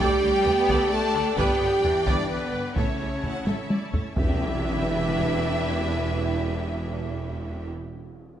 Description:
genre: cinematic, epic orchestral film score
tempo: 131 BPM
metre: 3/4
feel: straight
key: E dorian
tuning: A4 = 439 Hz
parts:
  - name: rich symphonic violin section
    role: melody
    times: 0.0-7.7 s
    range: B4 to A5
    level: -35 LUFS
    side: left 3 dB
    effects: none
  - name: hollow concert flute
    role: second line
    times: 0.0-7.7 s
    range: B4 to A5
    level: -33 LUFS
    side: left 1 dB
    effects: none
  - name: rich symphonic violin section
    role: second line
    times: 0.0-7.7 s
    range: B4 to G5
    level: -35 LUFS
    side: equal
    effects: none
  - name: clear symphonic viola section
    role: accompaniment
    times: 0.0-7.7 s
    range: D4 to D5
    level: -36 LUFS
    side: right 2 dB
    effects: none
  - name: mellow French horn section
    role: sustained chords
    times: 0.0-7.7 s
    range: B3 to A4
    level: -27 LUFS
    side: equal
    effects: none
  - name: rich symphonic string section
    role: sustained chords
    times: 0.0-7.7 s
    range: A3 to A5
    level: -34 LUFS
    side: left 1 dB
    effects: none
  - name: clear symphonic cello section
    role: bass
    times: 0.0-7.7 s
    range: E2 to B3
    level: -32 LUFS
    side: right 2 dB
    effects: none
  - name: clear symphonic double bass section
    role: bass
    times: 0.0-7.7 s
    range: E1 to D2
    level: -32 LUFS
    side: right 3 dB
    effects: none
  - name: taiko ensemble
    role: drums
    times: 0.0-5.3 s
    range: none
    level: -28 LUFS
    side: equal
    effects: none
  - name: tam-tam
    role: percussion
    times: 4.2-6.0 s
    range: none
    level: -35 LUFS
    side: left 2 dB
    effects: none
  - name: sub drop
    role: sound effects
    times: 4.2-5.5 s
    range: none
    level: -33 LUFS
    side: equal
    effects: none
room: wet scoring stage reverb, RT60 1.6 s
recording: nothing above 10.9 kHz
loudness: -22 LUFS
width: side -10 dB against mid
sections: 0.0-4.2 A section; 4.2-6.9 B section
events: drum fill 3.5-4.2; band accent 4.2-4.6; impact 4.2-5.5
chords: 0.0 Dsus4; 1.4 G; 2.8 A; 4.2 Em7

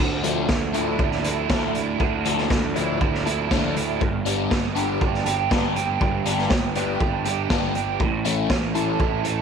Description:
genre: indie rock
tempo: 120 BPM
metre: 4/4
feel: straight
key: D dorian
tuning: A4 = 440 Hz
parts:
  - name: crunchy overdriven guitar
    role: riff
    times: 0.0-9.3 s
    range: D3 to E4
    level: -28 LUFS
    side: left 12 dB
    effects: phaser
  - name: overdriven electric guitar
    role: riff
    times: 0.0-9.4 s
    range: G2 to A4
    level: -25 LUFS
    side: right 11 dB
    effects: ensemble chorus
  - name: fuzz picked electric bass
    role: bass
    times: 0.0-9.4 s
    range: G1 to D2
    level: -28 LUFS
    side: equal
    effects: overdrive
  - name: raw garage drum kit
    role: drums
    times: 0.2-9.4 s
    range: hi-hat, kick drum, snare drum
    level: -24 LUFS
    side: equal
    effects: none
room: light reverb, studio ambience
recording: 1960s-style stereo with parts hard left and right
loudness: -20 LUFS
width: side -6 dB against mid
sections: 0.0-9.4 A section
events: none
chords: 0.0 Dmadd9; 4.0 G; 8.0 A

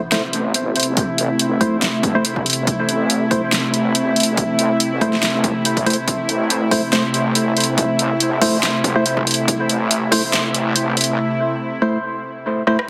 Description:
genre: deep dubstep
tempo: 141 BPM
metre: 4/4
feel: swing 55% on 16ths, half-time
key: A minor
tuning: A4 = 440 Hz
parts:
  - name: bowed-like drone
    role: sustained chords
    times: 0.2-11.1 s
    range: C3 to E4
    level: -23 LUFS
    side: equal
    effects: built-in reverb
  - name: wobble bass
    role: bass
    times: 0.0-11.2 s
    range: G1 to A1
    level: -28 LUFS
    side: equal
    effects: chorus, high-pass filter
  - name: percussive organ stab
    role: stabs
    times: 0.1-12.8 s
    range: A3 to C5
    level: -24 LUFS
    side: equal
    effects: chorus, cassette tape, dub echo
  - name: deep house drum kit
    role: drums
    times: 0.1-12.9 s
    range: hi-hat, rim click, snare drum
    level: -22 LUFS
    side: equal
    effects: overdrive, high-pass filter on hats, high-pass filter on snare
  - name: electronic kick drum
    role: drums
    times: 1.0-10.2 s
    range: none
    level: -26 LUFS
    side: equal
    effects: overdrive, high-pass filter on kick
room: moderate spring reverb, RT60 1.6 s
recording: heavily compressed radio sound, multiband compression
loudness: -18 LUFS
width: mono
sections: 0.0-12.9 A section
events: build-up 0.0-12.9; break 11.2-12.9; drum fill 12.7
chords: 0.0 Am

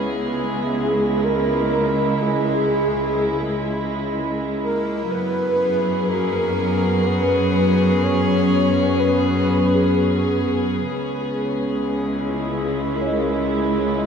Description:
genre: ambient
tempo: 62 BPM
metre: 3/4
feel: straight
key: C# dorian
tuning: A4 = 440 Hz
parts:
  - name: warm chamber string section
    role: sustained chords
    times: 0.0-14.1 s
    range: C#3 to G#4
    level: -21 LUFS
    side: equal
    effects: none
  - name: celesta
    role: arpeggios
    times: 0.0-14.1 s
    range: F#4 to C#6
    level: -31 LUFS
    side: left 1 dB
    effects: analog chorus, diffuse ambient delay
  - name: bright studio cello section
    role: bass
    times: 0.0-14.1 s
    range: C#2 to F#2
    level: -26 LUFS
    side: right 1 dB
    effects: none
  - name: breathy flute-like synth lead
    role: melody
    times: 0.3-10.4 s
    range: G#4 to C#5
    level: -23 LUFS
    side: equal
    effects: ensemble chorus, diffuse ambient delay
  - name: bowed-like drone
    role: drone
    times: 12.1-14.1 s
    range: C#3 to G#3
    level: -28 LUFS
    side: right 1 dB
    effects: built-in reverb
room: wet lush hall reverb, RT60 3.3 s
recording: dreamy mix soaked in reverb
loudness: -18 LUFS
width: side -7 dB against mid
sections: 0.0-14.1 A section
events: fade-in on celesta 0.0-14.1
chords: 0.0 C#m; 5.1 F#sus4; 10.9 C#m

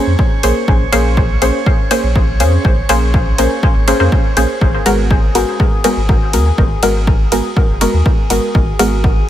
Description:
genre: dub techno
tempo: 122 BPM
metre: 4/4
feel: straight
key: G# minor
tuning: A4 = 440 Hz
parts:
  - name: filtered dub chord stab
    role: stabs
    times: 0.0-9.0 s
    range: G#3 to B#4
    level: -16 LUFS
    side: equal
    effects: chorus, phaser, sidechain pumping, dub echo
  - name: drifting glass-harmonics texture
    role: texture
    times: 0.0-9.3 s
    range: G#4 to C#5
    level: -26 LUFS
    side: right 1 dB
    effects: chorus, built-in reverb, sidechain pumping
  - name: warm sub bass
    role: bass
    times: 0.1-9.2 s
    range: F#1 to E#2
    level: -16 LUFS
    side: equal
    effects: sidechain pumping
  - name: electronic kick drum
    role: drums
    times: 0.2-9.1 s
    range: none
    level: -14 LUFS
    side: equal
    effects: none
  - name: deep house drum kit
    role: drums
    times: 0.4-8.9 s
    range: hi-hat, ride cymbal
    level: -25 LUFS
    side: equal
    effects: none
  - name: filtered dub chord stab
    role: riff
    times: 5.4-7.4 s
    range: F#4 to G#5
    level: -26 LUFS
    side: left 4 dB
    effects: phaser, sidechain pumping, dub echo
room: digital ambience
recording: none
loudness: -11 LUFS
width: side -12 dB against mid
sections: 0.0-9.3 A section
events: none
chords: 0.0 A#m9; 4.6 G#m9

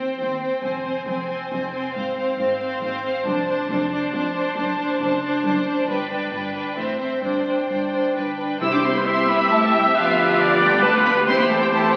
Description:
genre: quick classical-period movement for symphony orchestra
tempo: 137 BPM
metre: 3/4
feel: straight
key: C major from 3.3 s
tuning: A4 = 442 Hz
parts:
  - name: rich chamber violin section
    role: melody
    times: 0.0-12.0 s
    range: E5 to E6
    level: -31 LUFS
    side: equal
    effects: none
  - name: clear chamber violin section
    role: second line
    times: 0.0-12.0 s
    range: B3 to C5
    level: -28 LUFS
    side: equal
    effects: none
  - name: rich chamber viola section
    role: accompaniment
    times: 0.0-12.0 s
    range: C4 to E5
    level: -25 LUFS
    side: equal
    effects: none
  - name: rich studio double bass section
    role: bass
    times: 0.0-12.0 s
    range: F1 to E2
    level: -38 LUFS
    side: equal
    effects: none
  - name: rich symphonic cello section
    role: bass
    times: 0.0-12.0 s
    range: Eb2 to E4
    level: -32 LUFS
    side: equal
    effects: none
  - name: large flute ensemble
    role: second line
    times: 8.6-12.0 s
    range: F4 to E5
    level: -30 LUFS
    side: equal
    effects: none
  - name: warm clarinet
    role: second line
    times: 8.6-12.0 s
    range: G4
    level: -29 LUFS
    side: equal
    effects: none
  - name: warm oboe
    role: second line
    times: 8.6-12.0 s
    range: B4 to E5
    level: -25 LUFS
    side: equal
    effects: none
  - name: mellow French horn section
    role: sustained chords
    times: 8.6-12.0 s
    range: B3 to G4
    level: -32 LUFS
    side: equal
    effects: none
  - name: timpani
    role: percussion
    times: 8.6-9.2 s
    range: C3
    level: -36 LUFS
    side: equal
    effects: none
room: wet scoring stage reverb, RT60 1.5 s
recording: very old 78 rpm record, vinyl crackle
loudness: -21 LUFS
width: mono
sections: 0.0-8.6 A section; 8.6-12.0 B section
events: none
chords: 0.0 Cm/Eb; 0.6 Fm; 2.0 Fm/Ab; 3.3 Dm7/F; 4.6 D7/F#; 5.9 G; 6.8 Am; 7.2 Gsus4; 8.6 C; 10.0 G7/D; 11.3 C/E

